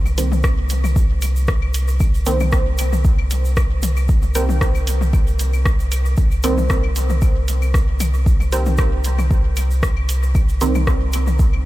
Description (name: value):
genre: dub techno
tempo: 115 BPM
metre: 4/4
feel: swing 54% on 16ths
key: C minor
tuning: A4 = 436 Hz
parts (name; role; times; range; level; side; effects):
- warm sub bass; bass; 0.0-11.7 s; C2; -19 LUFS; equal; sidechain pumping
- egg shaker; percussion; 0.1-11.5 s; none; -34 LUFS; right 3 dB; none
- electronic claves and toms; percussion; 0.1-11.6 s; none; -30 LUFS; left 6 dB; overdrive, sidechain pumping on perc, sidechain pumping on toms, dub echo
- filtered dub chord stab; stabs; 0.2-10.8 s; Eb3 to C4; -26 LUFS; right 2 dB; chorus, phaser, sidechain pumping, dub echo
- soft vintage rhythm box; drums; 0.2-11.2 s; hi-hat, rim click; -29 LUFS; equal; dub echo
- electronic kick drum; drums; 0.4-11.5 s; none; -17 LUFS; equal; none
room: digital ambience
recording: none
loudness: -15 LUFS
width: side -16 dB against mid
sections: 0.0-11.7 A section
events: none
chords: 0.0 Cm7